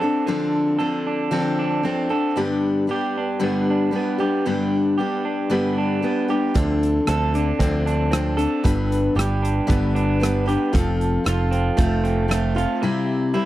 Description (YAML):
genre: folk rock and heartland rock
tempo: 115 BPM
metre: 4/4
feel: straight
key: unclear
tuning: A4 = 442 Hz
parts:
  - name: picked steel-string acoustic guitar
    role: accompaniment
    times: 0.0-13.5 s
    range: G2 to B4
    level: -22 LUFS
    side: left 2 dB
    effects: none
  - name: electric guitar through a small old amp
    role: riff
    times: 0.0-13.5 s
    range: F2 to A4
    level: -25 LUFS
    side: right 5 dB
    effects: spring reverb
  - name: picked electric bass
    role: bass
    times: 6.6-12.7 s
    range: F1 to D2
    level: -22 LUFS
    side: right 1 dB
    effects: none
  - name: natural country drum kit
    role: drums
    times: 6.6-12.7 s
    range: hi-hat, kick drum, rim click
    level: -23 LUFS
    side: right 1 dB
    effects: none
room: little or no reverb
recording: dry, close 1970s-style studio recording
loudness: -19 LUFS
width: side -14 dB against mid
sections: 0.0-13.5 A section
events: none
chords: 0.0 Dm7; 2.4 G; 6.6 Dm7; 8.6 G; 10.7 F; 12.8 C